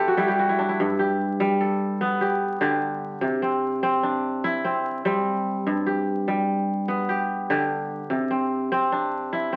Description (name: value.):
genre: west african traditional.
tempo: 98 BPM (dotted quarters).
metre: 12/8.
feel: straight.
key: G major.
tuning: A4 = 441 Hz.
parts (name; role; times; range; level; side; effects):
kora; solo; 0.0-9.6 s; G2 to E5; -24 LUFS; equal; none.
room: wet studio reverb, RT60 0.8 s.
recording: very old 78 rpm record, vinyl crackle.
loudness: -24 LUFS.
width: mono.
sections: 0.0-9.6 A section.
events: kora fill 0.0-0.8.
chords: 0.0 C; 0.8 G; 3.2 C; 5.7 G; 8.1 C.